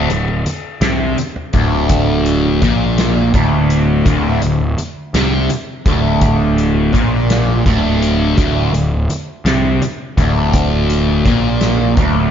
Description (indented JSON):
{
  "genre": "psychedelic rock",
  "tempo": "56 BPM (dotted quarters)",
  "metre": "6/8",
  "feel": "straight",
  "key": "unclear",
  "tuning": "A4 = 440 Hz",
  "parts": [
    { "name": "fuzz guitar", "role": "riff", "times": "0.0-12.3 s", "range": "D2 to C3", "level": "-15 LUFS", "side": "equal", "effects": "distortion, phaser" },
    { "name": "fuzz picked electric bass", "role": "bass", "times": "0.0-12.3 s", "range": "D1 to C2", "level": "-18 LUFS", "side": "equal", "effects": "overdrive" },
    { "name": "soft-mallet drum kit", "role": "drums", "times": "0.1-12.1 s", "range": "hi-hat, kick drum, snare drum", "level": "-19 LUFS", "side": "equal", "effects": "none" },
    { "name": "congas", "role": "percussion", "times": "0.3-12.3 s", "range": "none", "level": "-27 LUFS", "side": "right 1 dB", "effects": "none" }
  ],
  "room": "light reverb, small room ambience",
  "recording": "nothing above 7.5 kHz",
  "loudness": "-12 LUFS",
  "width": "side -8 dB against mid",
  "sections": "0.0-12.3 A section",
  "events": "none",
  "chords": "0.0 D5",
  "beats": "0.82 | 1.90 2.98 | 4.06 5.14 | 6.22 7.30 | 8.38 9.46 | 10.54 11.62"
}